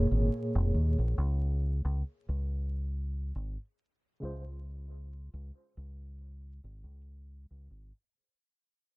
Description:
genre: trip hop.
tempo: 69 BPM.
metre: 4/4.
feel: swing 55% on 16ths.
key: Bb minor.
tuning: A4 = 438 Hz.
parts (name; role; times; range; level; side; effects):
overdriven tine electric piano; accompaniment; 0.0-4.4 s; Bb2 to Db5; -33 LUFS; equal; tremolo, low-pass filter, tape echo.
deep dub fingered electric bass; bass; 0.0-7.9 s; F1 to Eb2; -32 LUFS; equal; tube saturation.
room: digital ambience.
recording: vinyl crackle.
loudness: -30 LUFS.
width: side -24 dB against mid.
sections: 0.0-8.1 A section.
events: fade-out 0.0-8.1.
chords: 0.0 Bbm7; 1.2 N.C..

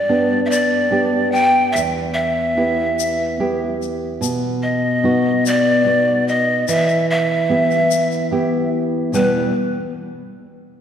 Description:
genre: andean folk, Andean ensemble.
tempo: 73 BPM.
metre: 3/4.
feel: straight.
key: E minor.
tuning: A4 = 440 Hz.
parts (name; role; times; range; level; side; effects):
breathy bright large pan pipes; melody; 0.0-9.5 s; B4 to G5; -18 LUFS; equal; none.
nylon-string guitar; accompaniment; 0.0-9.5 s; E2 to G4; -19 LUFS; equal; none.
tube shaker; percussion; 0.5-9.5 s; none; -30 LUFS; left 9 dB; none.
room: wet concert hall reverb, RT60 2.6 s.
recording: dark, warm production.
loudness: -15 LUFS.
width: side -8 dB against mid.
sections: 0.0-9.1 A section; 9.1-10.8 B section.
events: none.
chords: 0.0 G; 1.8 Em; 4.2 B; 6.7 Em.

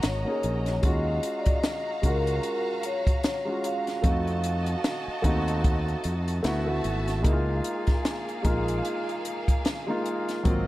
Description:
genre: lush 1970s-style soul.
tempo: 75 BPM.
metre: 4/4.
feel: swing 58% on 16ths.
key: Db major.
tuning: A4 = 440 Hz.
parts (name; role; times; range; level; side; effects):
rich studio violin section; second line; 0.0-10.7 s; Bb3 to Bb5; -35 LUFS; right 1 dB; none.
warm grand piano; accompaniment; 0.0-10.7 s; Gb3 to Ab4; -30 LUFS; equal; none.
fingered electric bass; bass; 0.0-10.7 s; Ab1 to F2; -28 LUFS; equal; none.
compact cocktail drum kit; drums; 0.0-10.7 s; hi-hat, kick drum, snare drum; -26 LUFS; equal; none.
vibraphone with soft mallets; melody; 0.1-6.0 s; Bb4 to F5; -31 LUFS; equal; none.
room: light reverb, small room ambience.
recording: dark, warm production.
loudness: -24 LUFS.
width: side -16 dB against mid.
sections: 0.0-10.7 A section.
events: none.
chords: 0.0 Gb6; 0.8 Ebm11; 4.0 F7b9; 6.4 D69; 7.2 Db69 (rootless).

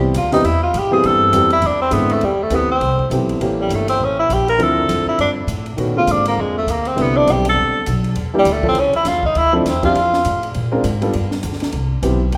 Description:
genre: jazz, small-group swing and bop.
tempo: 202 BPM.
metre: 4/4.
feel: swing 60% on 8ths.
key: A minor.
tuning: A4 = 440 Hz.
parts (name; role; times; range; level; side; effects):
warm tenor saxophone; melody; 0.0-10.5 s; G3 to Bb4; -19 LUFS; equal; none.
warm upright piano; accompaniment; 0.0-12.4 s; D3 to Bb4; -23 LUFS; equal; none.
upright bass; bass; 0.0-12.4 s; G1 to Bb2; -24 LUFS; equal; none.
compact cocktail drum kit; drums; 0.1-12.4 s; hi-hat, kick drum, ride cymbal, snare drum; -32 LUFS; equal; none.
room: moderate scoring stage reverb, RT60 2.2 s.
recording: recorded in a church or concert hall.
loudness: -17 LUFS.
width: mono.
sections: 0.0-2.2 A section; 2.2-11.7 A section.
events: tenor saxophone solo 0.0-11.7.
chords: 0.0 Cmaj7; 1.6 E7b13; 2.2 Am9; 3.4 A7b9; 4.6 Dm9; 5.8 Bb9; 7.0 Cmaj9; 8.2 Em7b5; 8.8 C#m; 9.4 Dm9; 10.5 Bb9; 11.1 G5; 11.7 Cmaj7.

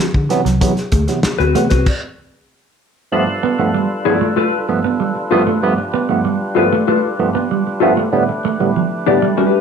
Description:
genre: funk.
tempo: 96 BPM.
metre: 4/4.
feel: straight.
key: unclear.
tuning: A4 = 440 Hz.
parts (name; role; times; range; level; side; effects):
mellow electric guitar; accompaniment; 0.0-9.6 s; C4 to D5; -16 LUFS; left 8 dB; wide subtle chorus.
mellow electric guitar; riff; 0.0-9.5 s; F3 to C4; -19 LUFS; right 5 dB; lush chorus.
vintage muted fingered electric bass; bass; 0.1-1.8 s; C2 to D3; -18 LUFS; left 1 dB; none.
warm soul drum kit; drums; 0.1-2.0 s; crash cymbal, hi-hat, kick drum, snare drum; -18 LUFS; equal; none.
barky tine electric piano; stabs; 0.3-9.2 s; G2 to B3; -18 LUFS; right 3 dB; phaser.
cowbell; percussion; 0.6-1.7 s; none; -27 LUFS; left 3 dB; none.
percussive tonewheel organ; sustained chords; 3.1-9.6 s; G3 to B4; -22 LUFS; equal; overdrive, slow rotary speaker.
room: moderate large studio reverb, RT60 0.8 s.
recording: none.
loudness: -14 LUFS.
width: side -6 dB against mid.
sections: 0.0-3.1 A section; 3.1-9.6 B section.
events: stop 1.9-3.1.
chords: 0.0 D13; 3.1 G9; 8.1 A9sus4.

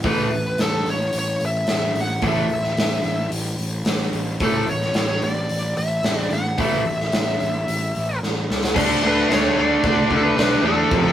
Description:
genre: hard rock.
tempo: 110 BPM.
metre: 4/4.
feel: straight.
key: A major.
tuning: A4 = 440 Hz.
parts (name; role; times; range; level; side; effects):
overdriven semi-hollow guitar; riff; 0.0-11.1 s; F2 to D4; -23 LUFS; right 4 dB; none.
tight distorted guitar; riff; 0.0-11.1 s; F2 to D4; -21 LUFS; left 4 dB; distortion.
fuzz picked electric bass; bass; 0.0-11.1 s; F1 to E2; -26 LUFS; equal; overdrive.
big rock drum kit; drums; 0.0-11.0 s; crash cymbal, hi-hat, kick drum, snare drum; -24 LUFS; equal; none.
smooth overdriven lead guitar; melody; 0.1-11.1 s; A4 to F#5; -24 LUFS; equal; none.
room: moderate studio reverb, RT60 0.6 s.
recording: rough rehearsal-room recording.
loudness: -18 LUFS.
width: side -11 dB against mid.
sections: 0.0-8.8 A section; 8.8-11.1 B section.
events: drum fill 8.2-8.8.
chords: 0.0 A5; 8.8 D5.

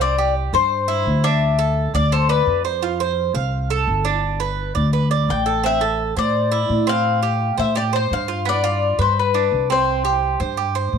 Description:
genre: latin.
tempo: 170 BPM.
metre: 4/4.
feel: straight.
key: C major.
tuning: A4 = 442 Hz.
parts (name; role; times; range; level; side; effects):
Cuban tres; melody; 0.0-2.6, 5.3-10.9 s; B4 to G5; -20 LUFS; left 10 dB; none.
Cuban tres; arpeggios; 0.0-11.0 s; B3 to F5; -22 LUFS; right 11 dB; none.
upright bass; bass; 0.0-11.0 s; G1 to A2; -22 LUFS; left 1 dB; none.
room: light reverb, studio ambience.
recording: 1960s-style stereo with parts hard left and right.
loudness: -17 LUFS.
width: side -6 dB against mid.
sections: 0.0-11.0 A section.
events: none.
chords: 0.0 C; 1.4 Dm; 2.8 F; 4.2 G; 5.6 Am; 7.1 Fadd9/A; 8.5 G7; 9.9 C5.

